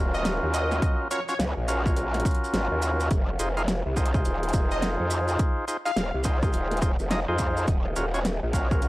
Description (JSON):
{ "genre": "glitch hop", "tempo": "105 BPM", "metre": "4/4", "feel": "swing 62% on 16ths", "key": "Eb dorian", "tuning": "A4 = 440 Hz", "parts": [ { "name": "percussive tonewheel organ", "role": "stabs", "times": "0.0-8.9 s", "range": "Db4 to F5", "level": "-29 LUFS", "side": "equal", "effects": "overdrive, sidechain pumping, analog delay" }, { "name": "growl bass", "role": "bass", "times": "0.0-8.9 s", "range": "Eb1 to F2", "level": "-27 LUFS", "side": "equal", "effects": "chorus, overdrive" }, { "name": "downlifter", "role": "sound effects", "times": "0.0-3.1 s", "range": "none", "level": "-45 LUFS", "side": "equal", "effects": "none" }, { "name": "plucky unison lead", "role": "melody", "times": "0.1-6.2 s", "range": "Db5 to F5", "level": "-33 LUFS", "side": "left 1 dB", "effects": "lush chorus, analog delay" }, { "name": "maracas", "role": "percussion", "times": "0.1-8.9 s", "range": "none", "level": "-39 LUFS", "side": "right 4 dB", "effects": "none" }, { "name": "pop drum kit", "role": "drums", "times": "0.2-8.9 s", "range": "hi-hat, snare drum", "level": "-31 LUFS", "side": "equal", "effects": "overdrive" }, { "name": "electronic kick drum", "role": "drums", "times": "0.8-8.8 s", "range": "none", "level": "-24 LUFS", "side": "equal", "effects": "overdrive" } ], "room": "little or no reverb", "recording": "dry, gritty hardware recording", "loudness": "-23 LUFS", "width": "side -18 dB against mid", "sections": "0.0-8.9 A section", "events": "none", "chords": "0.0 Ebm7; 3.1 Fm7; 7.7 Ebm7", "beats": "0.25 | 0.82 1.39 1.96 2.54 | 3.11 3.68 4.25 4.82 | 5.39 5.96 6.54 7.11 | 7.68 8.25 8.82" }